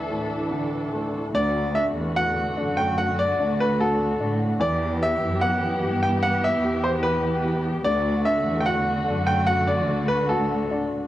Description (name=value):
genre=pop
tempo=74 BPM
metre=4/4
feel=straight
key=unclear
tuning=A4 = 435 Hz
part: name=bright grand piano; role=melody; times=0.0-10.9 s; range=A4 to G5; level=-24 LUFS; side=equal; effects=cassette tape, plate reverb
part: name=clear upright piano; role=accompaniment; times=0.0-11.1 s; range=D2 to G4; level=-30 LUFS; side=left 2 dB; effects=cassette tape, plate reverb
part: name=muted studio string section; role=sustained chords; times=0.0-11.1 s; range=D3 to A4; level=-28 LUFS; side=right 1 dB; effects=cassette tape, plate reverb
part: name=dark studio cello section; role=bass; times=1.3-11.1 s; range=D2 to A2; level=-27 LUFS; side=equal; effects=none
room=moderate studio reverb, RT60 0.6 s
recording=home recording on cassette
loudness=-21 LUFS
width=side -14 dB against mid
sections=0.0-1.3 A section; 1.3-11.1 B section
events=none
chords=0.0 Dsus2; 1.3 D; 4.6 Em; 7.9 D